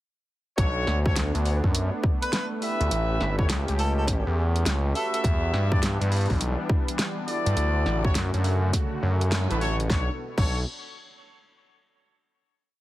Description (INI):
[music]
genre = glitch hop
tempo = 103 BPM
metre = 4/4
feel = swing 64% on 16ths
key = B minor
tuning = A4 = 445 Hz
[part]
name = warm analog pad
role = sustained chords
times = 0.6-10.2 s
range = B2 to A4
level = -33 LUFS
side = equal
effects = chorus, sidechain pumping
[part]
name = warm horn section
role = stabs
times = 0.6-10.6 s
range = D4 to E5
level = -31 LUFS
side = left 1 dB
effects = sidechain pumping, ping-pong delay
[part]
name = gritty driven synth bass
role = bass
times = 0.6-10.6 s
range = G1 to G2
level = -24 LUFS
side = equal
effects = tube saturation
[part]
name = electronic kick drum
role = drums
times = 0.6-10.5 s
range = none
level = -25 LUFS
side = equal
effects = none
[part]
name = pop drum kit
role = drums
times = 0.6-10.5 s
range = crash cymbal, hi-hat, snare drum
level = -31 LUFS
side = equal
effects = none
[part]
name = mellow harmonica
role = melody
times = 2.2-5.2 s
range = A4 to B4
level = -33 LUFS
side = equal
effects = ping-pong delay
[sound]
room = little or no reverb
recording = heavily compressed radio sound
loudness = -22 LUFS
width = side -16 dB against mid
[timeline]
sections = 0.6-9.9 drop; 9.9-12.2 final chord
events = drop 0.6-9.9; band accent 9.3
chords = 0.6 Bm7; 2.9 A7; 5.2 Em7; 7.6 Dmaj7; 9.9 Bm7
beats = | 0.58 1.16 1.74 2.33 | 2.91 3.49 4.07 4.66 | 5.24 5.82 6.40 6.99 | 7.57 8.15 8.73 9.32 | 9.90 10.48